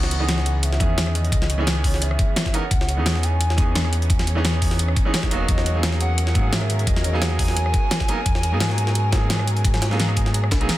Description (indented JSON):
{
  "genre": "liquid drum and bass",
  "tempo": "173 BPM",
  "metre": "4/4",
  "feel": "swing 53% on 16ths",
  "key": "C# dorian",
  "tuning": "A4 = 440 Hz",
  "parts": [
    { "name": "hollow clarinet-like synth lead", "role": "melody", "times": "0.0-10.6 s", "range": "C#5 to G#5", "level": "-30 LUFS", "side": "equal", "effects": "chorus, dub echo" },
    { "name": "clear baby grand piano", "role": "accompaniment", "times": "0.0-10.8 s", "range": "D#3 to A#4", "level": "-28 LUFS", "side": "right 2 dB", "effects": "vintage 12-bit sampler grit, dub echo" },
    { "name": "warm studio string section", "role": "sustained chords", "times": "0.0-10.8 s", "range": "C#3 to A#4", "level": "-33 LUFS", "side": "right 2 dB", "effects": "sidechain pumping" },
    { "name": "sub bass with octave", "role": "bass", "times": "0.0-10.7 s", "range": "E1 to G#2", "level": "-22 LUFS", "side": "equal", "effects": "none" },
    { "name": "jungle sampler-style drum kit", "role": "drums", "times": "0.0-10.8 s", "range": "hi-hat, snare drum", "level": "-29 LUFS", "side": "equal", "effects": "high-pass filter on snare, small room ambience, high-pass filter on hats" },
    { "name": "pop drum kit", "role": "drums", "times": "0.1-10.8 s", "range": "hi-hat, rim click, snare drum", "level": "-26 LUFS", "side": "equal", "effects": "small room ambience" },
    { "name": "electronic kick drum", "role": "drums", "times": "0.8-10.6 s", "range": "none", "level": "-22 LUFS", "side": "equal", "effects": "small room ambience" }
  ],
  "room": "digital ambience",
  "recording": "dense, heavily limited modern master",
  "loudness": "-18 LUFS",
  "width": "side -15 dB against mid",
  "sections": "0.0-10.8 A section",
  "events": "none",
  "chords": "0.0 C#m7; 5.3 Emaj9#11"
}